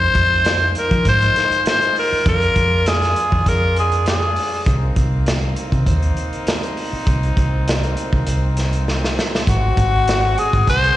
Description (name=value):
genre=straight-eighth soul blues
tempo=100 BPM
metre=4/4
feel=straight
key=C minor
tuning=A4 = 441 Hz
part: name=growling tenor saxophone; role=melody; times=0.0-4.6, 9.5-11.0 s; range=Gb4 to C5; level=-16 LUFS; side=left 1 dB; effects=slapback echo
part: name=bright horn section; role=sustained chords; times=0.0-11.0 s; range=Ab3 to Gb4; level=-27 LUFS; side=equal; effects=none
part: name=vintage muted fingered electric bass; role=bass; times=0.0-10.9 s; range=Ab1 to F3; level=-19 LUFS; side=equal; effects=none
part: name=crunchy breakbeat drum kit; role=drums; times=0.1-11.0 s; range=hi-hat, kick drum, snare drum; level=-21 LUFS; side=equal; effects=none
room=little or no reverb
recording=live gig heard through the venue's PA, recital hall reverb, nothing above 10.5 kHz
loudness=-15 LUFS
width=side -14 dB against mid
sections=0.0-11.0 A section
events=drum fill 8.9-9.5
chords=0.0 Fm7; 4.7 Cm7; 9.5 Ab7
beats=0.45 1.05 1.65 | 2.26 2.86 3.46 4.06 | 4.66 5.26 5.86 6.46 | 7.07 7.67 8.27 8.87 | 9.47 10.07 10.67